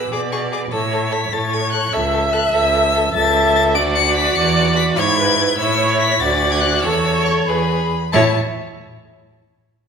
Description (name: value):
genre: quick classical-period movement for string quartet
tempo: 98 BPM (dotted quarters)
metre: 6/8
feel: straight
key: A major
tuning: A4 = 441 Hz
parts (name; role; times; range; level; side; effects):
- rich violin; melody; 0.0-8.4 s; A5 to D7; -20 LUFS; left 6 dB; none
- rich viola; accompaniment; 0.0-8.4 s; E4 to E5; -20 LUFS; right 1 dB; none
- rich cello; bass; 0.0-8.4 s; C#2 to B2; -21 LUFS; right 3 dB; none
- rich violin; second line; 0.1-8.4 s; E4 to C#5; -22 LUFS; left 1 dB; none
room: wet recital hall reverb, RT60 1.5 s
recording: minimal, uncompressed stereo recording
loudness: -14 LUFS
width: side -6 dB against mid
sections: 0.0-8.1 A section; 8.1-9.4 B section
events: none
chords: 0.0 Bm6; 0.7 A; 1.9 A/C#; 3.8 D; 4.4 E7; 5.6 A; 6.2 D; 6.8 A/E; 7.5 E; 8.1 A5